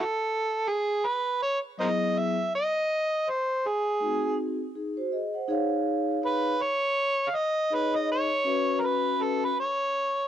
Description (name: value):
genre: hip hop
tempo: 81 BPM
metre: 4/4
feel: swing 60% on 16ths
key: F# dorian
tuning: A4 = 441 Hz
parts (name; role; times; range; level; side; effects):
- overdriven harmonica; melody; 0.0-10.3 s; G#4 to E#5; -26 LUFS; right 1 dB; none
- vibraphone with soft mallets; accompaniment; 1.8-9.5 s; F#3 to F#5; -28 LUFS; left 2 dB; none
room: small room ambience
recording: dry, close 1970s-style studio recording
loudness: -25 LUFS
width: side -10 dB against mid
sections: 0.0-10.3 A section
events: none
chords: 0.0 A5; 2.9 G#7; 5.5 C#add9; 8.5 F#5